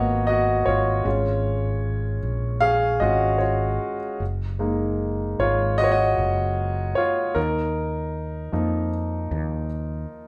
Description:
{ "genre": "pop ballad", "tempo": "76 BPM", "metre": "4/4", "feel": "straight", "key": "F# major", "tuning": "A4 = 440 Hz", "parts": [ { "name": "warm concert grand piano", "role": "accompaniment", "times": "0.0-10.3 s", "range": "E#3 to E#5", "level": "-25 LUFS", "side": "equal", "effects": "none" }, { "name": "mellow fretless electric bass", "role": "bass", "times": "0.0-10.1 s", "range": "F#1 to E#2", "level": "-28 LUFS", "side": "equal", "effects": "none" } ], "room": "moderate large studio reverb, RT60 0.9 s", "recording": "band playing live in one room", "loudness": "-23 LUFS", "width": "mono", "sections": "0.0-10.3 A section", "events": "grand piano solo 0.0-10.3", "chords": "0.0 G#m7; 1.1 C#/G#; 4.2 F#6; 7.4 D#sus2" }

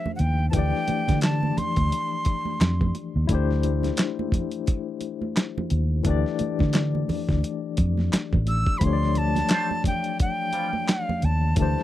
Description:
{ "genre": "R&B, neo-soul", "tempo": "87 BPM", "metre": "4/4", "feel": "swing 59% on 16ths", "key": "D minor", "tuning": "A4 = 441 Hz", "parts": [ { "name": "breathy bright jazz flute", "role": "melody", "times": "0.0-3.0, 8.5-11.8 s", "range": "E5 to E6", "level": "-28 LUFS", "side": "right 1 dB", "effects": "none" }, { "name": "barky tine electric piano", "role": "accompaniment", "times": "0.0-11.8 s", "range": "E3 to D5", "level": "-29 LUFS", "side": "left 10 dB", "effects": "overdrive, fast tremolo" }, { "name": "congas", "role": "percussion", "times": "0.1-11.8 s", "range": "none", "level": "-32 LUFS", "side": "right 5 dB", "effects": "none" }, { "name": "vintage muted fingered electric bass", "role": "bass", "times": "0.2-11.7 s", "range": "A1 to D3", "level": "-23 LUFS", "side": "equal", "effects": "none" }, { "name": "dusty soul sampler-style drum kit", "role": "drums", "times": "0.2-11.8 s", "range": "handclaps, hi-hat, kick drum, snare drum", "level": "-24 LUFS", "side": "equal", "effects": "none" }, { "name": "electric guitar through a small old amp", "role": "second line", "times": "9.5-10.7 s", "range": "G3 to F4", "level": "-31 LUFS", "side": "right 6 dB", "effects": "wah" } ], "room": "little or no reverb", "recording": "dry, close 1970s-style studio recording", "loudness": "-22 LUFS", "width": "side -14 dB against mid", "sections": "0.0-11.8 A section", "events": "none", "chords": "0.0 Dm11" }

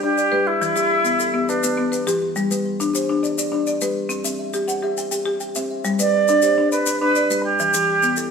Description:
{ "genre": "southern african traditional, mbira-style interlocking cycle", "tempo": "138 BPM (dotted quarters)", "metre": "12/8", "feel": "straight", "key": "G major", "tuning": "A4 = 445 Hz", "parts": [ { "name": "mellow concert flute", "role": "melody", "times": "0.0-2.1, 6.0-8.3 s", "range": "D4 to D5", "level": "-18 LUFS", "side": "right 3 dB", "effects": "none" }, { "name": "buzzing marimba with hard mallets", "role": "arpeggios", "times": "0.0-8.3 s", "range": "E3 to G5", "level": "-22 LUFS", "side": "left 3 dB", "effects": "none" }, { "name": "kalimba", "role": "arpeggios", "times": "0.0-8.3 s", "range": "E3 to G5", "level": "-26 LUFS", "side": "left 1 dB", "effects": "none" }, { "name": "maracas", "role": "percussion", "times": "0.2-8.3 s", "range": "none", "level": "-29 LUFS", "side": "left 4 dB", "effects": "none" } ], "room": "moderate stone room reverb, RT60 1.3 s", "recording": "band playing live in one room", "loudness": "-18 LUFS", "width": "side -6 dB against mid", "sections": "0.0-8.3 A section", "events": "none", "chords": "0.0 G; 0.6 Em; 2.4 G; 4.1 C; 5.9 G; 7.6 Em" }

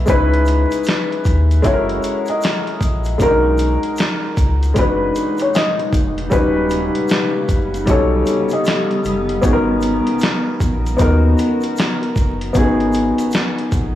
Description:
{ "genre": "lo-fi hip hop", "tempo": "77 BPM", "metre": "4/4", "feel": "swing 62% on 16ths", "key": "G# minor", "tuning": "A4 = 439 Hz", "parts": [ { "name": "warm upright piano", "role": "accompaniment", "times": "0.0-14.0 s", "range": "G3 to B4", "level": "-18 LUFS", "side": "left 1 dB", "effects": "cassette tape" }, { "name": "sub bass with octave", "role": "bass", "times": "0.0-14.0 s", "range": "D#1 to D#2", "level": "-19 LUFS", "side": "equal", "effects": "transformer saturation" }, { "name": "felt-muted upright piano", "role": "melody", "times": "0.1-9.4 s", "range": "A#4 to D#5", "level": "-22 LUFS", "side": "left 2 dB", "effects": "tape echo" }, { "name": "dusty soul sampler-style drum kit", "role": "drums", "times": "0.1-13.9 s", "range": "hi-hat, kick drum, snare drum", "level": "-19 LUFS", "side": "equal", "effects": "none" }, { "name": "egg shaker", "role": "percussion", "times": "0.1-13.9 s", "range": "none", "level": "-40 LUFS", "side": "right 3 dB", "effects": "none" }, { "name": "granular cloud pad", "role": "sustained chords", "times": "4.5-12.5 s", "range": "A#2 to A#4", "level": "-26 LUFS", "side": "equal", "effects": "built-in reverb" } ], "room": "light reverb", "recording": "dry, gritty hardware recording, vinyl crackle, studio reverb", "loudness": "-14 LUFS", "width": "side -12 dB against mid", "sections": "0.0-14.0 A section", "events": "none", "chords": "0.1 C#m9; 1.6 F#9; 3.2 Bmaj13; 6.3 D#7alt; 9.4 G#m11" }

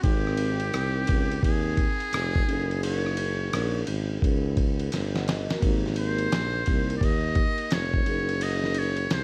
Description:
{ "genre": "hip hop, jazz-hop", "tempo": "86 BPM", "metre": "4/4", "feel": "swing 63% on 16ths", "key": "Ab major", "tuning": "A4 = 441 Hz", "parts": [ { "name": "trumpet with metal mute", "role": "melody", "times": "0.0-9.2 s", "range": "G4 to Eb5", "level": "-33 LUFS", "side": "equal", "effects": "slapback echo" }, { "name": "vibraphone with soft mallets", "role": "accompaniment", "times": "0.0-9.2 s", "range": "Bb3 to G5", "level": "-35 LUFS", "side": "equal", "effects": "none" }, { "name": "mellow tuba", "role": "bass", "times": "0.0-9.2 s", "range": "F1 to Eb2", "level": "-31 LUFS", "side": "equal", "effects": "none" }, { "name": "dusty soul sampler-style drum kit", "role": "drums", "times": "0.0-9.2 s", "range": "hi-hat, kick drum, ride cymbal, rim click, snare drum", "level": "-30 LUFS", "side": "equal", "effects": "none" } ], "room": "little or no reverb", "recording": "vinyl crackle", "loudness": "-26 LUFS", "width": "mono", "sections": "0.0-9.2 A section", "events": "drum fill 4.9-5.6", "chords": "0.0 Abmaj9; 2.5 Gb69; 5.6 Abmaj9; 8.1 Gb69" }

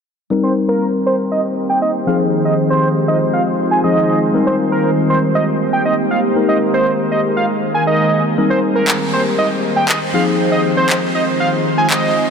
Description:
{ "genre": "dance-pop", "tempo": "119 BPM", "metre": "4/4", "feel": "straight", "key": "Eb major", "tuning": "A4 = 443 Hz", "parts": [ { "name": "tine electric piano", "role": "accompaniment", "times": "0.3-12.1 s", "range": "F3 to Bb4", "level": "-18 LUFS", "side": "left 4 dB", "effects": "wide subtle chorus, low-pass filter" }, { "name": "ethereal airy pad", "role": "sustained chords", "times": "1.3-12.3 s", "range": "Eb3 to C5", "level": "-18 LUFS", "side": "right 1 dB", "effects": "ensemble chorus, built-in reverb, phaser, low-pass filter" }, { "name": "fat analog lead", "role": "melody", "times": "0.4-12.3 s", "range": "Bb4 to Ab5", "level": "-17 LUFS", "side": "right 2 dB", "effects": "chorus, low-pass filter, ping-pong delay" }, { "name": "electronic handclaps", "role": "drums", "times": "8.9-12.0 s", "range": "none", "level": "-20 LUFS", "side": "equal", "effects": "overdrive" } ], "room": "wet huge ambient reverb, RT60 6.6 s", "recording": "dreamy mix soaked in reverb", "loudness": "-13 LUFS", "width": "side -6 dB against mid", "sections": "0.3-12.3 A section", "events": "filter sweep 0.3-12.3", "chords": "0.3 Eb6; 2.1 Fm7; 4.3 Cm7; 6.4 Absus2; 8.4 Eb6; 10.1 Fm7" }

